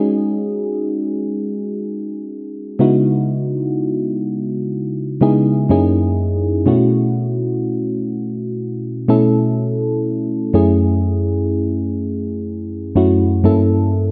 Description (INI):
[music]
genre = R&B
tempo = 62 BPM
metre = 4/4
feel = swing 54% on 16ths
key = C# minor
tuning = A4 = 436 Hz
[part]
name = mellow FM electric piano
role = solo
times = 0.0-14.1 s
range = F#2 to A4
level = -18 LUFS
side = equal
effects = chorus
[sound]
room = light reverb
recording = dark, warm production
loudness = -18 LUFS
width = mono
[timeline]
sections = 0.0-2.8 A section; 2.8-14.1 B section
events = none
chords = 0.0 G#7sus4; 2.8 C#m11; 5.7 F#13; 6.7 B9sus4; 10.5 F#m9; 13.4 Gdim7